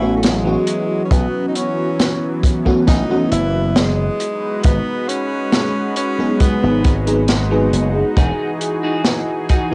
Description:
vaporwave; 68 BPM; 4/4; straight; A4 = 441 Hz
breathy tenor saxophone; melody; 0.0-8.1 s; G#3 to E4; -26 LUFS; equal; cassette tape, tape echo
FM electric piano with soft pad layer; accompaniment; 0.0-9.7 s; E3 to G#4; -22 LUFS; equal; phaser, ensemble chorus, cassette tape, tape echo
lush unison pad; sustained chords; 0.0-9.7 s; E3 to B4; -25 LUFS; equal; chorus, cassette tape
slap bass with an envelope filter; bass; 0.0-8.3 s; E1 to B1; -22 LUFS; equal
open jazz drum kit; drums; 0.2-9.7 s; hi-hat, snare drum; -22 LUFS; equal; vintage 12-bit sampler grit
kick drum; drums; 1.1-9.7 s; -17 LUFS; equal; vintage 12-bit sampler grit
clean electric guitar; riff; 8.2-9.7 s; D#4 to G#4; -26 LUFS; equal; analog chorus, cassette tape, tape echo
moderate booth ambience, RT60 0.2 s; home recording on cassette; -17 LUFS; mono
0.0-9.7 A section
0.0 A69; 0.7 B9sus4; 4.2 G#m7; 8.2 Emaj9
0.23 | 1.11 1.99 2.88 3.76 | 4.64 5.52 6.41 7.29 | 8.17 9.05

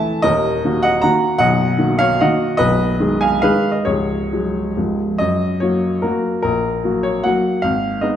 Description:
classical, romantic triple-time dance for piano with dotted rhythms; 125-165 BPM; 3/4; rubato; F# major; A4 = 436 Hz
dark baby grand piano; solo; 0.0-8.2 s; B0 to A#5; -15 LUFS; equal
wet recital hall reverb, RT60 1.4 s; minimal, uncompressed stereo recording; -15 LUFS; side -9 dB against mid
0.0-5.2 A section; 5.2-8.2 B section
0.2 D#m; 1.4 Bmaj7; 2.6 G#m/B; 3.9 C#sus4; 4.8 C#; 5.2 F#; 6.4 F#/A#; 7.6 G#m
| 0.25 0.64 1.03 | 1.40 1.79 2.19 | 2.58 2.99 3.43 | 3.86 4.32 4.77 | 5.20 5.62 6.05 | 6.44 6.84 7.25 | 7.63 8.04

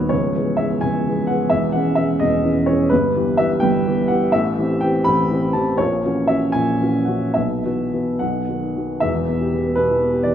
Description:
classical, romantic character piece for solo piano; 70-88 BPM (dotted quarters); 6/8; rubato; E minor; A4 = 438 Hz
warm upright piano; solo; 0.0-10.3 s; C#1 to B5; -17 LUFS; equal
wet recital hall reverb, RT60 1.6 s; -17 LUFS; side -10 dB against mid
0.0-9.0 A section; 9.0-10.3 B section
0.1 C#m7; 1.5 C#m/E; 2.9 Em/G; 4.3 Am7; 5.8 F#7/A#; 7.4 Bsus4; 8.2 B; 9.0 Em
| 0.12 0.83 | 1.52 2.21 | 2.92 3.62 | 4.34 5.06 | 5.79 6.54 | 7.36 8.21 | 9.03 9.78

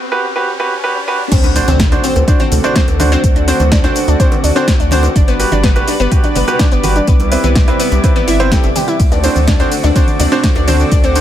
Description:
progressive house; 125 BPM; 4/4; straight; D mixolydian; A4 = 440 Hz
riser and impact; sound effects; 0.0-3.2 s; -22 LUFS; equal
bright grand piano; stabs; 0.1-11.2 s; C4 to C5; -18 LUFS; right 2 dB; sidechain pumping, ping-pong delay
lush unison pad; sustained chords; 1.3-11.2 s; C3 to B4; -20 LUFS; equal; chorus, sidechain pumping
analog pluck; arpeggios; 1.3-11.1 s; B3 to G4; -18 LUFS; left 1 dB; chorus, sidechain pumping, ping-pong delay
round analog bass; bass; 1.3-11.2 s; G1 to D2; -15 LUFS; equal; sidechain pumping, high-pass filter
deep house drum kit; drums; 1.3-11.2 s; crash cymbal, hi-hat, ride cymbal, shaker, snare drum; -20 LUFS; left 1 dB; overdrive
electronic kick drum; drums; 1.3-11.0 s; -12 LUFS; equal; overdrive, high-pass filter on kick
drifting glass-harmonics texture; texture; 2.2-11.2 s; D5 to D6; -27 LUFS; equal; chorus, built-in reverb, sidechain pumping
bongos and congas; percussion; 1.4-11.0 s; -25 LUFS; right 3 dB; sidechain pumping on perc
digital ambience; high-pass filter; -10 LUFS; side -11 dB against mid
0.0-1.3 A section; 1.3-11.2 B section
break 0.0-1.3; build-up 0.0-1.3; riser 0.0-1.3; drop 1.3-11.2; impact 1.3-3.2
0.0 Gmaj7/F#; 1.3 D7; 5.2 Gmaj7; 7.1 Cmaj7; 9.0 D7
0.36 0.84 | 1.32 1.80 2.28 2.76 | 3.24 3.72 4.20 4.68 | 5.16 5.64 6.12 6.60 | 7.08 7.56 8.04 8.52 | 9.00 9.48 9.96 10.44 | 10.92

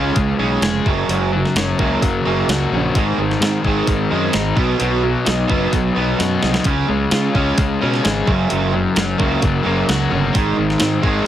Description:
indie rock; 130 BPM; 4/4; straight; A4 = 440 Hz
crunchy overdriven guitar; riff; 0.0-11.3 s; Gb2 to Ab4; -20 LUFS; left 5 dB
overdriven semi-hollow guitar; riff; 0.0-11.3 s; Gb2 to Db4; -20 LUFS; right 7 dB; lush chorus, analog delay
fuzz fingered electric bass; bass; 0.0-11.2 s; F1 to Db3; -22 LUFS; equal; overdrive
clean 12-bit digital drum machine; drums; 0.2-11.1 s; hi-hat, kick drum, snare drum; -20 LUFS; equal; overdrive
little or no reverb; heavily compressed radio sound, multiband compression; -15 LUFS; side -11 dB against mid
0.0-11.3 A section
drum fill 6.2-6.7
0.0 Db; 0.9 Gb; 2.9 Ab; 4.6 B; 6.7 Db; 8.3 Gb; 10.3 Ab
0.17 0.63 | 1.09 1.56 2.02 2.48 | 2.95 3.41 3.87 4.34 | 4.80 5.26 5.72 6.19 | 6.65 7.11 7.57 8.04 | 8.50 8.96 9.42 9.88 | 10.34 10.80 11.26

